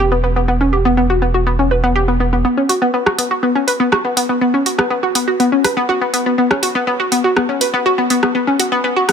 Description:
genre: melodic techno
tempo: 122 BPM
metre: 4/4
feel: straight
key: unclear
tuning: A4 = 440 Hz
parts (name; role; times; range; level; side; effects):
- analog pluck; arpeggios; 0.0-9.1 s; B3 to B4; -14 LUFS; left 1 dB; chorus, ping-pong delay
- round analog bass; bass; 0.0-2.4 s; E1; -17 LUFS; right 1 dB; none
- techno drum kit; drums; 2.7-9.1 s; hi-hat, rim click; -19 LUFS; right 1 dB; none
room: light reverb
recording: none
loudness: -13 LUFS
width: side -7 dB against mid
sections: 0.0-2.4 A section; 2.4-9.1 B section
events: build-up 2.4-9.1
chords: 0.0 Em; 2.4 Bsus2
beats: | 0.48 0.97 1.47 1.96 | 2.45 2.94 3.43 3.92 | 4.42 4.91 5.40 5.89 | 6.38 6.87 7.37 7.86 | 8.35 8.84

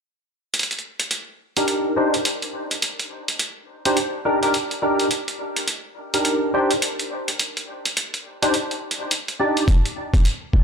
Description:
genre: glitch hop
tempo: 105 BPM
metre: 4/4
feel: swing 61% on 16ths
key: C minor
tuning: A4 = 439 Hz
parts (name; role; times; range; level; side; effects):
- electronic hi-hat; drums; 0.5-10.4 s; none; -24 LUFS; right 1 dB; none
- barky tine electric piano; stabs; 1.6-9.6 s; D4 to D5; -22 LUFS; equal; overdrive, ensemble chorus, sidechain pumping, low-pass filter, diffuse ambient delay
- electronic kick drum; drums; 9.7-10.6 s; none; -16 LUFS; equal; none
room: moderate plate reverb, RT60 1.9 s, digital ambience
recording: dreamy mix soaked in reverb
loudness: -20 LUFS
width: side -6 dB against mid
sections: 0.5-10.6 A section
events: filter sweep on tine electric piano 0.5-10.6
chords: 0.5 Cm7 (rootless)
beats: | 0.54 1.11 1.68 2.25 | 2.82 3.39 3.97 4.54 | 5.11 5.68 6.25 6.82 | 7.39 7.97 8.54 9.11 | 9.68 10.25

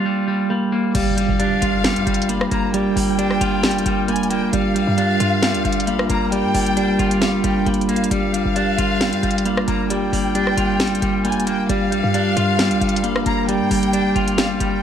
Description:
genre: hip hop, trap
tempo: 134 BPM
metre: 4/4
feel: half-time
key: G minor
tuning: A4 = 440 Hz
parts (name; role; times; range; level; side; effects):
- electric guitar at the edge of break-up; accompaniment; 0.0-14.8 s; G3 to F4; -24 LUFS; left 1 dB; none
- mellow tine electric piano; arpeggios; 0.0-14.8 s; G3 to Bb3; -20 LUFS; right 2 dB; medium stereo tremolo, tape echo
- warm studio violin section; second line; 0.9-14.8 s; F5 to Bb5; -25 LUFS; equal; tape echo
- dark analog pad; sustained chords; 0.9-14.8 s; G3 to Bb4; -28 LUFS; left 3 dB; wide subtle chorus
- short 808-style bass; bass; 0.9-14.8 s; F1 to G2; -26 LUFS; left 1 dB; none
- trap drum kit; drums; 0.9-14.7 s; crash cymbal, hi-hat, rim click, snare drum; -24 LUFS; equal; none
- impact; sound effects; 0.9-2.7 s; none; -29 LUFS; left 2 dB; none
room: moderate recital hall reverb, RT60 1.5 s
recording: none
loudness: -16 LUFS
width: side -9 dB against mid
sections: 0.9-14.8 A section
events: break 0.0-0.9; impact 0.9-2.7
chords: 0.0 Gm7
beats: 0.05 0.50 | 0.95 1.40 1.84 2.29 | 2.74 3.19 3.63 4.08 | 4.53 4.98 5.43 5.87 | 6.32 6.77 7.22 7.66 | 8.11 8.56 9.01 9.46 | 9.90 10.35 10.80 11.25 | 11.69 12.14 12.59 13.04 | 13.48 13.93 14.38

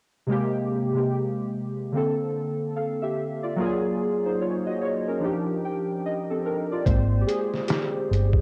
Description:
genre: lo-fi hip hop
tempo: 73 BPM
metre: 4/4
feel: swing 62% on 16ths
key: Ab lydian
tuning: A4 = 440 Hz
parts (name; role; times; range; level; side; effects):
- warbly lo-fi synth keys; accompaniment; 0.3-8.4 s; C3 to G5; -27 LUFS; equal; chorus, low-pass filter, cassette tape
- vintage muted fingered electric bass; bass; 6.9-8.4 s; G1 to Ab1; -24 LUFS; equal; none
- trip hop sampler-style drum kit; drums; 6.9-8.4 s; hi-hat, kick drum, snare drum; -27 LUFS; equal; vintage 12-bit sampler grit, cassette tape
room: moderate booth ambience, RT60 0.2 s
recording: home recording on cassette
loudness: -26 LUFS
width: mono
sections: 0.3-6.9 A section; 6.9-8.4 B section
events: synth keys fill 5.2-6.9; synth keys solo 6.9-8.4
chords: 0.3 Abmaj9; 1.9 Bbmaj9; 3.6 Gbmaj9; 5.2 Ebmaj9; 6.9 Abmaj9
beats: | 0.29 1.11 1.93 2.75 | 3.58 4.40 5.22 6.04 | 6.87 7.69

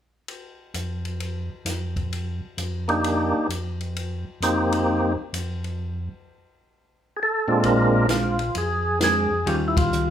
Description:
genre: soul jazz organ trio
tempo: 131 BPM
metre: 4/4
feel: swing 66% on 8ths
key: Bb mixolydian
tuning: A4 = 440 Hz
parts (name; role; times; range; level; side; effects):
- compact cocktail drum kit; drums; 0.3-10.1 s; hi-hat, kick drum, ride cymbal, snare drum; -30 LUFS; left 2 dB; none
- mellow tonewheel organ; bass; 0.7-10.1 s; Bb1 to F2; -28 LUFS; equal; chorus vibrato, slow rotary speaker
- percussive tonewheel organ; melody; 2.9-10.1 s; Bb2 to Bb4; -21 LUFS; equal; slow rotary speaker
- hollow-body jazz guitar; accompaniment; 8.1-10.1 s; Eb3 to F4; -26 LUFS; equal; none
room: moderate large studio reverb, RT60 0.9 s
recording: band playing live in one room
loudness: -21 LUFS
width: side -9 dB against mid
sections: 0.3-7.6 A section; 7.6-10.1 B section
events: break 5.8-7.6; band accent 9.7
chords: 0.3 N.C.; 2.1 F13sus4; 5.8 N.C.; 6.7 Bb9; 9.5 Eb9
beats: | 0.29 0.75 1.21 1.67 | 2.13 2.59 3.05 3.51 | 3.97 4.42 4.88 5.34 | 5.80 6.26 6.72 7.18 | 7.64 8.10 8.55 9.01 | 9.47 9.93

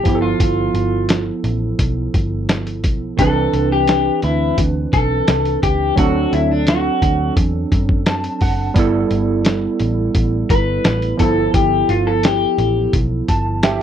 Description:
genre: indie pop, bedroom pop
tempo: 86 BPM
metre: 4/4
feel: straight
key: G major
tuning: A4 = 444 Hz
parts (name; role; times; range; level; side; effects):
- electric guitar through a small old amp; accompaniment; 0.0-12.9 s; D4 to B4; -18 LUFS; left 3 dB; wide subtle chorus, warbly pitch drift
- warm analog keys; accompaniment; 0.0-13.8 s; Eb3 to A5; -20 LUFS; right 4 dB; chorus, cassette tape
- vintage muted picked electric bass; bass; 0.1-13.8 s; F#1 to F#2; -20 LUFS; equal; none
- lo-fi sampler-style drum kit; drums; 0.1-13.8 s; hi-hat, kick drum, snare drum; -17 LUFS; equal; none
room: little or no reverb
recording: dry, close 1970s-style studio recording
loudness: -14 LUFS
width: side -9 dB against mid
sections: 0.0-13.8 A section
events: clean electric guitar solo 0.0-13.8; synth keys fill 7.7-8.8, 12.9-13.8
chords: 0.1 G13; 3.2 Cmaj9; 6.0 D7; 8.8 G69; 11.2 G13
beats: | 0.41 1.10 1.80 2.49 | 3.19 3.88 4.58 5.28 | 5.97 6.67 7.36 8.06 | 8.76 9.45 10.15 10.85 | 11.54 12.24 12.93 13.63

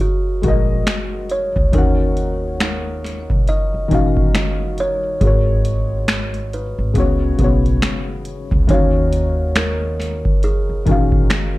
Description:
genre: lo-fi hip hop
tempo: 69 BPM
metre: 4/4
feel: swing 61% on 16ths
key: Eb minor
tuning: A4 = 440 Hz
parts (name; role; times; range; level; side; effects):
- kalimba; melody; 0.0-11.6 s; Gb4 to Gb5; -24 LUFS; right 1 dB; low-pass filter, tape echo, plate reverb
- felt-muted upright piano; accompaniment; 0.0-11.6 s; Db3 to Gb5; -22 LUFS; left 3 dB; low-pass filter, plate reverb
- booming analog drum machine; drums; 0.0-11.6 s; finger snaps, hi-hat, kick drum, snare drum; -18 LUFS; equal; none
- upright bass; bass; 0.4-11.2 s; Ab1 to Eb2; -21 LUFS; equal; none
- finger snaps; percussion; 9.6-11.5 s; none; barely audible; none; none
room: light reverb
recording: dark, warm production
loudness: -15 LUFS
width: side -18 dB against mid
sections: 0.0-8.7 A section; 8.7-11.6 B section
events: none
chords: 0.0 Ab9sus4; 1.7 Ebm9; 5.2 Ab9sus4; 7.0 Db7sus4; 8.7 Ebm9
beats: 0.86 | 1.73 2.60 3.47 4.34 | 5.21 6.08 6.95 7.82 | 8.69 9.56 10.43 11.30

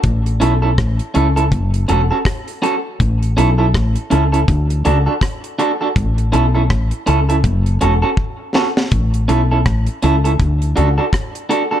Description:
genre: roots reggae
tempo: 81 BPM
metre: 4/4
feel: swing 60% on 16ths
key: A major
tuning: A4 = 441 Hz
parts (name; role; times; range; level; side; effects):
- woody fretless electric bass; bass; 0.0-11.0 s; E1 to D2; -15 LUFS; left 1 dB; none
- deep reggae drum kit; drums; 0.0-11.7 s; hi-hat, kick drum, rim click, snare drum; -19 LUFS; equal; vintage 12-bit sampler grit
- electric guitar at the edge of break-up; accompaniment; 0.4-11.8 s; C#4 to A4; -18 LUFS; right 2 dB; none
room: studio ambience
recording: none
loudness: -13 LUFS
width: side -10 dB against mid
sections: 0.0-11.8 A section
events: drum fill 8.2-8.9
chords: 0.0 A; 1.5 F#m; 3.0 A; 4.5 D; 6.0 A; 7.4 F#m; 8.9 A; 10.4 D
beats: | 0.04 0.78 1.52 2.26 | 3.00 3.74 4.48 5.22 | 5.96 6.70 7.44 8.18 | 8.92 9.66 10.39 11.13

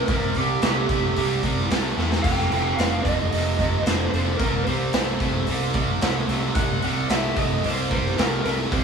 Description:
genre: blues rock power trio and southern rock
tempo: 111 BPM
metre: 4/4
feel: straight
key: unclear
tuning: A4 = 439 Hz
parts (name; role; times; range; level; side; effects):
- lead guitar through a small cranked amp; melody; 0.0-8.8 s; G4 to G5; -27 LUFS; right 2 dB; overdrive
- distorted electric guitar; riff; 0.0-8.8 s; F2 to A3; -26 LUFS; right 2 dB; overdrive
- fuzz picked electric bass; bass; 0.0-8.8 s; F1 to E2; -26 LUFS; equal; overdrive
- raw garage drum kit; drums; 0.1-8.8 s; crash cymbal, hi-hat, kick drum, snare drum; -24 LUFS; right 1 dB; none
room: moderate studio reverb, RT60 0.9 s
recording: band playing live in one room, small room ambience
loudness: -20 LUFS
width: side -6 dB against mid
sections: 0.0-8.8 A section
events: drum fill 2.0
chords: 0.0 C5; 2.2 F5; 4.4 C5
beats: | 0.08 0.62 1.16 1.70 | 2.24 2.78 3.32 3.85 | 4.39 4.93 5.47 6.01 | 6.55 7.09 7.63 8.18 | 8.72

